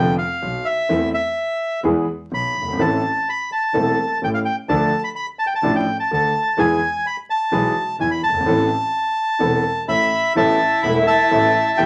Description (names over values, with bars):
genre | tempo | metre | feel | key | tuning
tango | 127 BPM | 4/4 | rubato | A minor | A4 = 440 Hz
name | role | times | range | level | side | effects
bandoneon | melody | 0.0-11.9 s | E5 to B5 | -21 LUFS | equal | none
warm concert grand piano | accompaniment | 0.0-11.9 s | E1 to A4 | -23 LUFS | equal | none
clear double bass | bass | 0.0-11.9 s | E1 to E2 | -31 LUFS | equal | none
dark cello | second line | 10.4-11.9 s | E4 to G4 | -27 LUFS | equal | none
room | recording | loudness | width
wet studio reverb, RT60 0.5 s | vinyl crackle, nothing above 10.4 kHz | -19 LUFS | mono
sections
0.0-10.4 A section; 10.4-11.9 A section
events
none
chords
0.0 Bdim; 0.9 Am/E; 1.8 E; 2.8 Am; 4.7 Dm; 6.6 E; 8.5 Amadd9; 10.4 Asus2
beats
0.42 | 0.89 1.37 1.84 2.31 | 2.79 3.27 3.74 4.22 | 4.69 5.16 5.63 6.10 | 6.57 7.04 7.51 7.98 | 8.46 8.93 9.40 9.88 | 10.36 10.84 11.31 11.79